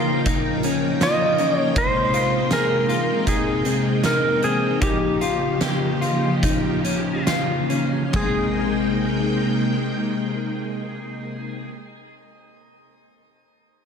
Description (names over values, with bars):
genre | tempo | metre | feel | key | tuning
dream pop | 68-80 BPM | 4/4 | straight | Ab major | A4 = 439 Hz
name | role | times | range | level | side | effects
string machine, violins | sustained chords | 0.0-11.7 s | C3 to G5 | -23 LUFS | equal | ensemble chorus, shimmer reverb
clean electric guitar | arpeggios | 0.0-11.8 s | Ab3 to Ab4 | -26 LUFS | left 5 dB | lush chorus, digital delay, shimmer reverb
oversized low-tuned drum kit | drums | 0.3-8.3 s | hi-hat, kick drum, snare drum, splash cymbal, toms | -26 LUFS | right 1 dB | none
clean lap steel guitar | melody | 1.0-11.7 s | G4 to Eb5 | -25 LUFS | right 1 dB | digital delay, shimmer reverb
room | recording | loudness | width
wet lush hall reverb, RT60 2.0 s | none | -19 LUFS | side -6 dB against mid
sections
0.0-8.1 A section; 8.1-11.7 B section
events
slowing down 1.8-8.1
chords
0.0 Eb9; 1.8 Abmaj9; 4.8 Eb9; 8.1 Abmaj9